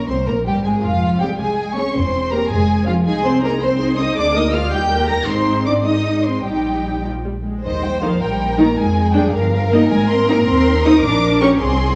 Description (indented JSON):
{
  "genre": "quick classical-period movement for string orchestra",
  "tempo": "107 BPM (dotted quarters)",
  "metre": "6/8",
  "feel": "rubato",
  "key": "Eb major from 3.1 s",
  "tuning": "A4 = 442 Hz",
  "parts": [
    { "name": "warm symphonic violin section", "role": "melody", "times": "0.0-12.0 s", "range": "Eb5 to Bb6", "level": "-26 LUFS", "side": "equal", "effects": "none" },
    { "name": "warm symphonic violin section", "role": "second line", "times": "0.0-12.0 s", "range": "F4 to Bb5", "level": "-24 LUFS", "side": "equal", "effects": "none" },
    { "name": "warm symphonic viola section", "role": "accompaniment", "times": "0.1-11.5 s", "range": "Eb3 to C5", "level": "-23 LUFS", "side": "equal", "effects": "none" },
    { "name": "rich symphonic double bass section", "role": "bass", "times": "0.1-12.0 s", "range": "E1 to F2", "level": "-24 LUFS", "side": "equal", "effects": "none" },
    { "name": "warm symphonic cello section", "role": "bass", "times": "0.1-12.0 s", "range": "Eb3 to Bb4", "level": "-23 LUFS", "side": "equal", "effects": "none" }
  ],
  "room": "moderate concert hall reverb, RT60 2.2 s",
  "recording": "worn, warbling old tape, cassette tape, warbly pitch drift, small room ambience",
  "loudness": "-17 LUFS",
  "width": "mono",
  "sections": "0.0-7.6 A section; 7.6-12.0 B section",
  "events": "none",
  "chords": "0.3 Gm; 0.8 Fm; 2.0 C/E; 2.5 Fm; 3.1 Ab/C; 4.2 Bb7/D; 4.7 Eb; 5.3 Ab; 6.4 Eb/Bb; 7.1 Bb5; 7.6 Eb; 8.8 Ddim/F; 9.3 Eb/G; 9.9 Ab; 11.0 Gdim/Bb"
}